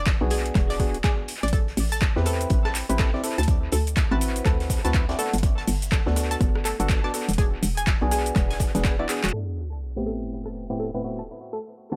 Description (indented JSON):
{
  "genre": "deep house",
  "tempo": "123 BPM",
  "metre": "4/4",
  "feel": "swing 60% on 16ths",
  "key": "A dorian",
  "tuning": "A4 = 440 Hz",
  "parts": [
    { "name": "analog pluck", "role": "arpeggios", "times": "0.0-12.0 s", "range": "E4 to A5", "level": "-35 LUFS", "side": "equal", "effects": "chorus, cassette tape, sidechain pumping, analog delay" },
    { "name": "hollow knocking FM bass", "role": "bass", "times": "0.0-9.3 s", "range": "D1 to E2", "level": "-28 LUFS", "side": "equal", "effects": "sidechain pumping" },
    { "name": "crunchy breakbeat drum kit", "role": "drums", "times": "0.1-9.3 s", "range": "hi-hat, snare drum", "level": "-43 LUFS", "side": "equal", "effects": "none" },
    { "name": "deep house drum kit", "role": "drums", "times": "0.1-10.5 s", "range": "handclaps, hi-hat, rim click, shaker", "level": "-33 LUFS", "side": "equal", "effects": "overdrive, low-pass filter on hats, studio reverb, low-pass filter on snare, low-pass filter on perc, tape echo" },
    { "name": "electronic kick drum", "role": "drums", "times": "0.1-9.0 s", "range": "none", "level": "-25 LUFS", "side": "equal", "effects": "overdrive, studio reverb" },
    { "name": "percussive organ stab", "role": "stabs", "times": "0.2-12.0 s", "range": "A2 to D5", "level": "-32 LUFS", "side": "equal", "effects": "chorus, phaser, sidechain pumping, analog delay" },
    { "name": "sub drop", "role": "sound effects", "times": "9.3-11.3 s", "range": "none", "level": "-36 LUFS", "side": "equal", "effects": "none" }
  ],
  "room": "little or no reverb",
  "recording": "echo-heavy mix, low-pass filter",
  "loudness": "-24 LUFS",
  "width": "mono",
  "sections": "0.0-9.3 A section; 9.3-12.0 B section",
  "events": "drum fill 9.1; band accent 9.2; impact 9.3-11.3; filter sweep on synth arpeggio sound 9.3-12.0; filter sweep 9.3-12.0",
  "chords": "0.0 E9; 1.5 Am7; 3.5 D13; 5.2 Gmaj9; 7.4 E9; 9.3 Am7; 11.3 N.C."
}